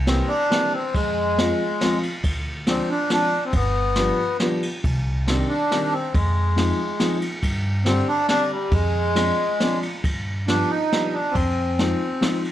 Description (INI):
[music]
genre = musette waltz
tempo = 138 BPM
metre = 3/4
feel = straight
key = unclear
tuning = A4 = 439 Hz
[part]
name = upright bass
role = bass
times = 0.0-11.9 s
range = G1 to G2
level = -24 LUFS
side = equal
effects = none
[part]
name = accordion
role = melody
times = 0.1-12.4 s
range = G3 to Eb4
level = -22 LUFS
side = equal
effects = none
[part]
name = warm upright piano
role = accompaniment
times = 0.1-12.4 s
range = D3 to F4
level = -25 LUFS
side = left 1 dB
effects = none
[part]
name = jazz brush drum kit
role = drums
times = 0.1-12.5 s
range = kick drum, ride cymbal, snare drum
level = -26 LUFS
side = equal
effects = none
[sound]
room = light reverb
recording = close, detailed microphones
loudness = -19 LUFS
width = side -12 dB against mid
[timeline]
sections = 0.0-12.5 A section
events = none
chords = 0.0 C7; 0.9 Fm; 2.2 Dm7b5; 3.5 G7; 4.8 Cmadd9; 6.1 Fm7; 7.4 Gsus4; 8.7 Dm7b5/F; 10.0 G7; 11.4 Fm7